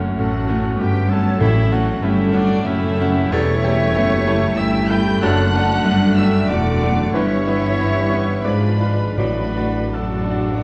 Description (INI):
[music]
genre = classical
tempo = 78-100 BPM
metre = 3/4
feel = rubato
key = D major from 3.3 s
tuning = A4 = 442 Hz
[part]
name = clear baby grand piano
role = melody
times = 0.0-10.6 s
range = E2 to D5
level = -24 LUFS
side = equal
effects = none
[part]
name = muted studio viola section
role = accompaniment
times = 0.0-10.6 s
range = A3 to F#4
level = -30 LUFS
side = equal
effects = none
[part]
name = clear trombone section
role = sustained chords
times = 0.0-10.6 s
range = E3 to A3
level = -32 LUFS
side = equal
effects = none
[part]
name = mellow French horn section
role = sustained chords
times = 0.0-10.6 s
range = B3 to B4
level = -31 LUFS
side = equal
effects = none
[part]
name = muted studio cello section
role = bass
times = 0.0-10.6 s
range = E2 to A2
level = -24 LUFS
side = equal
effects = none
[part]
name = muted studio double bass section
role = bass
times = 0.0-10.6 s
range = E1 to A1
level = -25 LUFS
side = equal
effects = none
[part]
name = muted studio violin section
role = melody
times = 0.2-10.6 s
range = D5 to G6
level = -34 LUFS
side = equal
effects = none
[part]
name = mellow small flute group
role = second line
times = 0.2-10.6 s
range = F#4 to B5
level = -30 LUFS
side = equal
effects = none
[part]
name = muted studio violin section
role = second line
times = 0.2-10.6 s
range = D4 to G5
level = -34 LUFS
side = equal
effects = none
[part]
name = warm cor anglais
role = second line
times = 0.2-10.6 s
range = D4 to G5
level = -31 LUFS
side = equal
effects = none
[part]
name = clear clarinet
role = second line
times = 1.4-9.5 s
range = A4 to D5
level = -31 LUFS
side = equal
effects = none
[part]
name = dark bassoon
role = accompaniment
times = 1.4-9.5 s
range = E3 to A3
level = -31 LUFS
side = equal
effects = none
[part]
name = timpani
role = percussion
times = 1.4-2.3, 9.2-10.3 s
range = A2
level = -26 LUFS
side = equal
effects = none
[sound]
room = moderate scoring stage reverb, RT60 1.7 s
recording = dark, warm production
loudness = -18 LUFS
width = mono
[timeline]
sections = 0.0-10.6 A section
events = none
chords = 0.0 F#m; 3.3 A7/E; 5.2 D/F#; 7.1 Em/G; 8.5 G#dim7; 9.2 D/A